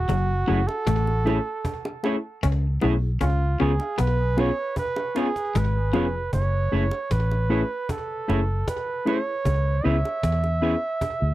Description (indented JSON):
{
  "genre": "lovers rock reggae",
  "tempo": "77 BPM",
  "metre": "4/4",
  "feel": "straight",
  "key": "F# minor",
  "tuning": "A4 = 439 Hz",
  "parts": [
    { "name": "breathy flugelhorn", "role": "melody", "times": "0.0-11.3 s", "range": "E#4 to E5", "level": "-28 LUFS", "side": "right 3 dB", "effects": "tape echo" },
    { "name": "vintage muted fingered electric bass", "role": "bass", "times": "0.0-11.3 s", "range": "E#1 to E2", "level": "-23 LUFS", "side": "equal", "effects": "none" },
    { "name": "twangy electric guitar", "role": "riff", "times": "0.1-6.2 s", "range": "E#3 to C#4", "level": "-30 LUFS", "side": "left 7 dB", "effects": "none" },
    { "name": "cajon", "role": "drums", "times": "0.1-11.3 s", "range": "none", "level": "-32 LUFS", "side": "equal", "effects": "slapback echo" },
    { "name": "bongos", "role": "percussion", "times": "0.1-11.2 s", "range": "none", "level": "-34 LUFS", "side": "right 1 dB", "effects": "none" },
    { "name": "mellow tine electric piano", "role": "accompaniment", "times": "0.5-11.3 s", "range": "A3 to G#4", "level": "-25 LUFS", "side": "left 2 dB", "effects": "none" },
    { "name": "electric guitar through a small old amp", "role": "stabs", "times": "0.5-10.7 s", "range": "E4 to C#5", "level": "-28 LUFS", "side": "right 3 dB", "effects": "none" }
  ],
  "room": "light reverb",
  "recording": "dry, close 1970s-style studio recording",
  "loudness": "-22 LUFS",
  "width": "side -16 dB against mid",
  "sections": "0.0-6.3 A section; 6.3-11.3 B section",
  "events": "flugelhorn solo 0.0-6.3",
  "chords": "0.1 F#m7; 3.2 C#7; 6.3 F#m7; 9.4 C#m7"
}